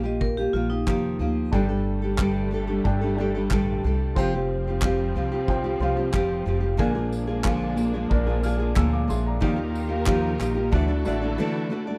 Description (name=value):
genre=acoustic pop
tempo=91 BPM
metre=4/4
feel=straight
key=unclear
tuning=A4 = 440 Hz
part: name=vibraphone with hard mallets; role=second line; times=0.0-1.5 s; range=Eb4 to Eb5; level=-32 LUFS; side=equal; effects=none
part: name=nylon-string guitar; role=accompaniment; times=0.0-12.0 s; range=G2 to D5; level=-28 LUFS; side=equal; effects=none
part: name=upright bass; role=bass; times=0.0-11.4 s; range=F1 to Eb2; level=-30 LUFS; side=equal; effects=none
part: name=loose indie drum kit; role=drums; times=0.2-11.2 s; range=handclaps, kick drum, tambourine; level=-28 LUFS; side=equal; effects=none
part: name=felt-muted upright piano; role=accompaniment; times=1.5-12.0 s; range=D4 to F6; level=-35 LUFS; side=equal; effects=none
part: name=warm studio string section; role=sustained chords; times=1.5-12.0 s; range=D3 to Bb4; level=-38 LUFS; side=equal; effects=none
room=small room ambience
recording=none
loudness=-24 LUFS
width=mono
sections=0.0-12.0 A section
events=break 11.4-12.0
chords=0.0 Ebadd9; 1.5 Gsus2; 4.2 Fsus2; 6.8 Bb7; 9.4 Ebadd9; 10.7 Dadd9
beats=0.21 0.87 | 1.52 2.18 2.84 3.50 | 4.16 4.82 5.48 6.13 | 6.79 7.45 8.11 8.76 | 9.42 10.07 10.73 11.38